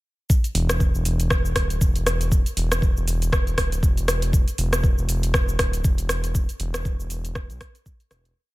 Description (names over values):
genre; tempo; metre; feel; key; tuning
afro house; 119 BPM; 4/4; swing 57% on 16ths; unclear; A4 = 440 Hz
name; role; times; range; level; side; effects
afro-pop drum kit; drums; 0.3-8.3 s; hi-hat, rim click, shaker; -26 LUFS; equal; none
electronic kick drum; drums; 0.3-8.0 s; none; -20 LUFS; equal; none
smooth gliding synth bass; bass; 0.5-8.3 s; D1 to B1; -24 LUFS; equal; sidechain pumping
room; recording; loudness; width
little or no reverb; none; -20 LUFS; side -19 dB against mid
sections
0.3-8.4 drop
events
drop 0.3-8.4; fade-out 5.7-8.4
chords
none